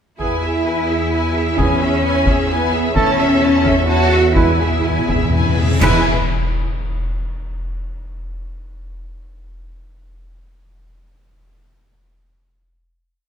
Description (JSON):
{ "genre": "cinematic, epic orchestral film score", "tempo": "122-131 BPM", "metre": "3/4", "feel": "straight", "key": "E major", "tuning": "A4 = 440 Hz", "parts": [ { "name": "clear symphonic violin section", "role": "melody", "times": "0.2-6.1 s", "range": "E5 to A5", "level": "-25 LUFS", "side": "left 3 dB", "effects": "none" }, { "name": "dark symphonic violin section", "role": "second line", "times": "0.2-6.1 s", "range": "G#4 to E5", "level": "-26 LUFS", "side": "left 4 dB", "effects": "none" }, { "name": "rich symphonic viola section", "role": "accompaniment", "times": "0.2-6.1 s", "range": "E4 to A4", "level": "-26 LUFS", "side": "right 3 dB", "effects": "none" }, { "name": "mellow French horn section", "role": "sustained chords", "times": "0.2-6.0 s", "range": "B3 to F#4", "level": "-22 LUFS", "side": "left 3 dB", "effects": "none" }, { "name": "warm trombone section", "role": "sustained chords", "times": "0.2-6.0 s", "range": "E3 to B3", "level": "-29 LUFS", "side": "right 3 dB", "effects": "none" }, { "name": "dark trumpet", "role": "stabs", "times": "0.2-6.0 s", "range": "G#4 to B4", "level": "-25 LUFS", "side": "right 2 dB", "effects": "none" }, { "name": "clear symphonic cello section", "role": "bass", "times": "0.2-6.1 s", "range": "B3 to F#4", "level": "-20 LUFS", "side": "right 3 dB", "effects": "none" }, { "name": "clear symphonic double bass section", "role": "bass", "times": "0.2-6.1 s", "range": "E2", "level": "-21 LUFS", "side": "right 2 dB", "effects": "none" }, { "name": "taiko ensemble", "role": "drums", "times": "0.2-6.7 s", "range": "none", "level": "-22 LUFS", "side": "equal", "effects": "none" }, { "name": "cymbal swell, clash cymbals and concert bass drum", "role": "percussion", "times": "3.0-6.7 s", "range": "none", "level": "-24 LUFS", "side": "equal", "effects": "none" }, { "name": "timpani", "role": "percussion", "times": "3.0-6.0 s", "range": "E2", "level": "-22 LUFS", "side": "left 2 dB", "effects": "none" }, { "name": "reverse cymbal and impact", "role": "sound effects", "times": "5.4-7.3 s", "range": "none", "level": "-30 LUFS", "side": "equal", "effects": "none" } ], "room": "wet scoring stage reverb, RT60 2.0 s", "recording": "none", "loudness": "-14 LUFS", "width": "side -8 dB against mid", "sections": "0.2-5.8 theme; 5.8-7.3 final chord", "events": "timpani fill 4.4-5.8; reverse cymbal 5.4-5.8; band accent 5.8-6.3; impact 5.8-7.3", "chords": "0.2 E; 3.0 A/E; 4.4 E" }